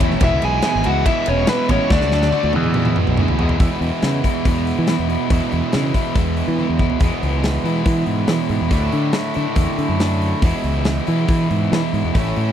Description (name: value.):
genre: classic rock.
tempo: 141 BPM.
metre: 4/4.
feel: straight.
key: E mixolydian.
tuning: A4 = 440 Hz.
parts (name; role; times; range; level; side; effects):
cranked stack guitar; riff; 0.0-12.5 s; E2 to G#4; -23 LUFS; right 12 dB; overdrive.
overdriven semi-hollow guitar; riff; 0.0-12.5 s; E2 to G#4; -24 LUFS; left 12 dB; none.
growling fingered electric bass; bass; 0.0-12.5 s; E1 to E3; -20 LUFS; equal; overdrive.
big rock drum kit; drums; 0.0-12.5 s; hi-hat, kick drum, ride cymbal, snare drum, toms; -20 LUFS; equal; none.
nasal lead guitar with a parked wah; melody; 0.2-2.5 s; B4 to G#5; -21 LUFS; left 2 dB; overdrive, tape echo.
lightly driven lead guitar; second line; 0.2-2.5 s; B3 to G#4; -28 LUFS; right 3 dB; none.
room: small room reverb.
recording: dry, close 1970s-style studio recording.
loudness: -16 LUFS.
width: side -9 dB against mid.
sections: 0.0-3.6 A section; 3.6-7.0 B section; 7.0-12.5 C section.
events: drum fill 1.9-3.6, 6.6-7.0.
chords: 0.2 E; 1.9 D; 2.5 E; 8.7 Dsus2; 10.4 E.